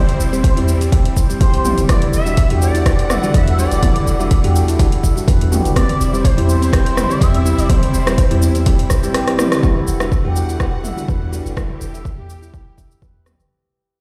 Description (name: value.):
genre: afro house.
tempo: 124 BPM.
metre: 4/4.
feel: swing 54% on 16ths.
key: E minor.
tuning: A4 = 440 Hz.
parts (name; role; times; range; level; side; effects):
expressive synth lead; melody; 0.0-8.6 s; C5 to E5; -26 LUFS; equal; ensemble chorus, dub echo.
clear symphonic string section; sustained chords; 0.0-13.5 s; C3 to F#5; -30 LUFS; equal; sidechain pumping.
handpan; arpeggios; 0.0-13.4 s; C4 to E5; -28 LUFS; equal; sidechain pumping, dub echo.
bell-like tine electric piano; stabs; 0.0-11.5 s; G3 to G4; -25 LUFS; equal; sidechain pumping, dub echo.
warm 808-style bass; bass; 0.0-13.5 s; E1 to E2; -21 LUFS; equal; sidechain pumping.
deep house drum kit; drums; 0.1-13.5 s; hi-hat, rim click, shaker, toms; -25 LUFS; equal; none.
electronic kick drum; drums; 0.4-13.1 s; none; -17 LUFS; equal; none.
room: light reverb, digital ambience.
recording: played on a big sound system in a bare room, stone room reverb.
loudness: -15 LUFS.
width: mono.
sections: 0.0-9.6 A section; 9.6-13.5 B section.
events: drop 0.0-9.6; drum fill 8.9-9.6; band accent 9.5; fade-out 9.6-13.5.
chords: 0.0 C/E; 1.9 Em9; 5.8 C/E; 9.6 Em9.